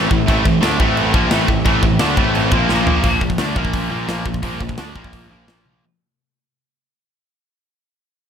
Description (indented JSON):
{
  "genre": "heavy metal",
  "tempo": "173 BPM",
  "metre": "4/4",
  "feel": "straight",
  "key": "unclear",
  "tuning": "A4 = 436 Hz",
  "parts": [
    { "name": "clear symphonic string section", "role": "sustained chords", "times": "0.0-3.0 s", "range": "Bb3 to F5", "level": "-28 LUFS", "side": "left 2 dB", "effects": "none" },
    { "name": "heavy high-gain guitar", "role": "riff", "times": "0.0-3.0 s", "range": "A2 to D4", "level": "-22 LUFS", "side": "right 1 dB", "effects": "distortion" },
    { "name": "high-gain distorted guitar", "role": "riff", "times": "0.0-5.8 s", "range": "A2 to D4", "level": "-22 LUFS", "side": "left 12 dB", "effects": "distortion" },
    { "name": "high-gain distorted guitar", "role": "riff", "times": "0.0-5.8 s", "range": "A2 to D4", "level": "-21 LUFS", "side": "right 11 dB", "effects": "distortion" },
    { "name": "fuzz picked electric bass", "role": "bass", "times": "0.0-5.8 s", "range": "A1 to D2", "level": "-23 LUFS", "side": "equal", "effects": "overdrive" },
    { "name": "tight metal drum kit", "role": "drums", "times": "0.1-5.7 s", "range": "china cymbal, hi-hat, kick drum, snare drum, toms", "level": "-19 LUFS", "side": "equal", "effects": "none" }
  ],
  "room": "light reverb",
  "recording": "none",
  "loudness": "-14 LUFS",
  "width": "side -8 dB against mid",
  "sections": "0.0-3.0 A section; 3.0-5.8 B section",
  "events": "drum fill 2.7-3.0, 5.7; fade-out 3.0-5.8",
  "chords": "0.0 Am; 2.7 Bb5"
}